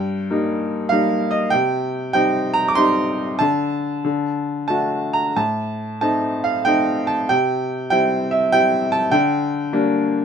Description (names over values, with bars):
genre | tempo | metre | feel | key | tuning
classical, lyrical solo piano | 89-100 BPM | 3/4 | rubato | unclear | A4 = 436 Hz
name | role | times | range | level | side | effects
bright upright piano | solo | 0.0-10.2 s | G2 to D6 | -17 LUFS | equal | none
room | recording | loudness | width
little or no reverb | close, detailed microphones | -17 LUFS | side -7 dB against mid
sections
0.0-10.2 A section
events
none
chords
0.0 Eb/G; 1.5 Cm; 3.4 N.C.; 4.0 D; 5.4 Adim; 7.3 C; 9.1 Gm/D